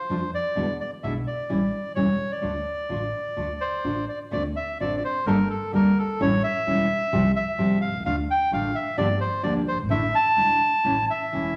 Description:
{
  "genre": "tango",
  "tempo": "129 BPM",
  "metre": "4/4",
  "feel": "rubato",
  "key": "D minor",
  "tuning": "A4 = 441 Hz",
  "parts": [
    { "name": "bandoneon", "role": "melody", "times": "0.0-11.5 s", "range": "A4 to A5", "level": "-27 LUFS", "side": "equal", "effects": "none" },
    { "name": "nylon-string guitar", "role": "accompaniment", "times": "0.1-11.5 s", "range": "B2 to A4", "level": "-28 LUFS", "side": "equal", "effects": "none" },
    { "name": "upright bass", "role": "bass", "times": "0.1-11.5 s", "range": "E1 to F2", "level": "-35 LUFS", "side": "equal", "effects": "none" }
  ],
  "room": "wet large studio reverb, RT60 1.2 s",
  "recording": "none",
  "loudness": "-24 LUFS",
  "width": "mono",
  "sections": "0.0-4.3 A section; 4.3-11.6 A section",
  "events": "none",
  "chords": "0.0 F6; 0.6 E7; 1.5 A7; 2.4 Dm; 4.3 Dm7; 5.3 Gmadd9; 6.2 A7; 7.1 Csus4; 8.1 Dm; 9.0 Gm7; 9.9 Asus4; 10.9 A",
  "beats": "0.11 | 0.57 1.03 1.50 1.96 | 2.43 2.90 3.37 3.85 | 4.32 4.80 5.27 5.73 | 6.20 6.67 7.13 7.59 | 8.05 8.52 8.98 9.44 | 9.91 10.38 10.86 11.33"
}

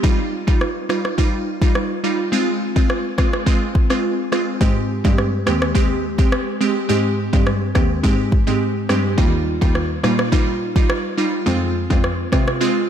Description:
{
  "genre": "dancehall",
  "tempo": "105 BPM",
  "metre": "4/4",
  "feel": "straight",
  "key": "Ab major",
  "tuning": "A4 = 440 Hz",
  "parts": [
    { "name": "glassy wavetable pluck", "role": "accompaniment", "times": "0.0-12.8 s", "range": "G3 to G4", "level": "-20 LUFS", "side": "right 1 dB", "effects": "chorus" },
    { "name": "afro-pop drum kit", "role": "drums", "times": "0.0-12.6 s", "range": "kick drum, rim click", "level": "-19 LUFS", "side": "equal", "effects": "none" },
    { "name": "clear cello", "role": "bass", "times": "4.6-12.5 s", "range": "Eb2 to C3", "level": "-22 LUFS", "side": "equal", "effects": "none" }
  ],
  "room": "moderate plate reverb, RT60 2.3 s",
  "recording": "dreamy mix soaked in reverb",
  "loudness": "-16 LUFS",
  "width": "side -9 dB against mid",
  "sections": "0.0-12.9 A section",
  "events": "break 0.0-4.6",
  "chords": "0.0 Ebadd9; 2.3 Fm; 4.6 Abmaj7; 9.2 Ebadd9; 11.5 Fm",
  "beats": "| 0.04 0.61 1.18 1.75 | 2.32 2.89 3.47 4.04 | 4.61 5.18 5.75 6.32 | 6.89 7.47 8.04 8.61 | 9.18 9.75 10.32 10.89 | 11.47 12.04 12.61"
}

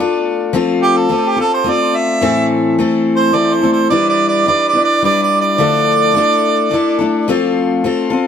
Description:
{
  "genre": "rock",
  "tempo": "107 BPM",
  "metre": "3/4",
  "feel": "straight",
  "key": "unclear",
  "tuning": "A4 = 445 Hz",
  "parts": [
    { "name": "picked steel-string acoustic guitar", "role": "accompaniment", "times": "0.0-8.3 s", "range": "A2 to B4", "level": "-14 LUFS", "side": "left 4 dB", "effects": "none" },
    { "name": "warm harmonica", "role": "melody", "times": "0.8-7.1 s", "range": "G4 to E5", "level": "-14 LUFS", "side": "right 4 dB", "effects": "tape echo" }
  ],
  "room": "light reverb",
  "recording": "echo-heavy mix",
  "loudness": "-12 LUFS",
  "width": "side -8 dB against mid",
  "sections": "0.5-8.3 A section",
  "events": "harmonica solo 0.5-8.3",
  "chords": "0.0 Dm; 0.5 F; 2.2 Am; 3.9 G6; 5.6 Dmadd9; 7.3 F",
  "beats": "| 0.55 1.11 1.67 | 2.23 2.79 3.35 | 3.91 4.47 5.03 | 5.59 6.16 6.72 | 7.28 7.84"
}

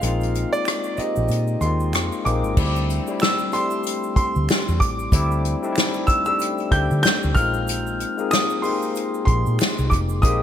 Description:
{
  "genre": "R&B, neo-soul",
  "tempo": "94 BPM",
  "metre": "4/4",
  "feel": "swing 60% on 16ths",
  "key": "D minor",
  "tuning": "A4 = 438 Hz",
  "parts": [
    { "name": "clear concert grand piano", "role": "melody", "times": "0.0-10.4 s", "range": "D5 to G6", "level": "-25 LUFS", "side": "right 1 dB", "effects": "none" },
    { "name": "barky tine electric piano", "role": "accompaniment", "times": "0.0-10.4 s", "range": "G3 to Ab4", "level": "-25 LUFS", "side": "left 4 dB", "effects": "overdrive, lush chorus" },
    { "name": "vintage muted fingered electric bass", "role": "bass", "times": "0.0-10.4 s", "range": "F1 to D3", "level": "-22 LUFS", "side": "equal", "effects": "none" },
    { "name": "unplugged drum kit", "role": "drums", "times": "0.0-10.4 s", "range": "crash cymbal, hi-hat, kick drum, rim click, snare drum", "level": "-22 LUFS", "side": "equal", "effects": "gated reverb" },
    { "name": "egg shaker and finger snaps", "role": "percussion", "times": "0.0-10.4 s", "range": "none", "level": "-38 LUFS", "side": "right 8 dB", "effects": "none" }
  ],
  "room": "light reverb, small room reverb",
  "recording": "bright 1980s-style digital production",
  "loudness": "-19 LUFS",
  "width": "side -10 dB against mid",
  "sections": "0.0-2.6 A section; 2.6-10.4 B section",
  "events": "break 0.0-2.6",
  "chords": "0.0 Bb9sus4; 2.6 D9sus4; 7.4 Bb9sus4",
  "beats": "| 0.02 0.66 1.29 1.93 | 2.57 3.21 3.85 4.49 | 5.12 5.76 6.40 7.04 | 7.68 8.32 8.95 9.59 | 10.23"
}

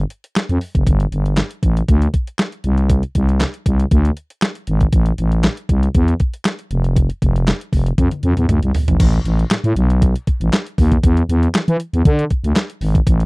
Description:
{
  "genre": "early-eighties boogie funk",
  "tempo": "118 BPM",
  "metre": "4/4",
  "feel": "straight",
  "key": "A minor",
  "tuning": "A4 = 443 Hz",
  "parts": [
    { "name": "growling FM bass", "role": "bass", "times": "0.0-13.3 s", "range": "F1 to E3", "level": "-15 LUFS", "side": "equal", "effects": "none" },
    { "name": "clean 12-bit digital drum machine", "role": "drums", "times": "0.1-13.3 s", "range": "crash cymbal, handclaps, hi-hat, kick drum, snare drum, toms", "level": "-16 LUFS", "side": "equal", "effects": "none" }
  ],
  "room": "little or no reverb",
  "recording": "dry, close 1970s-style studio recording",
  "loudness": "-14 LUFS",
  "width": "side -31 dB against mid",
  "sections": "0.0-9.0 A section; 9.0-13.3 B section",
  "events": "drum fill 8.0-9.0",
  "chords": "none",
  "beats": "0.35 | 0.86 1.37 1.88 2.39 | 2.90 3.41 3.91 4.42 | 4.93 5.44 5.95 6.46 | 6.96 7.47 7.98 8.49 | 9.00 9.51 10.02 10.52 | 11.03 11.54 12.05 12.56 | 13.07"
}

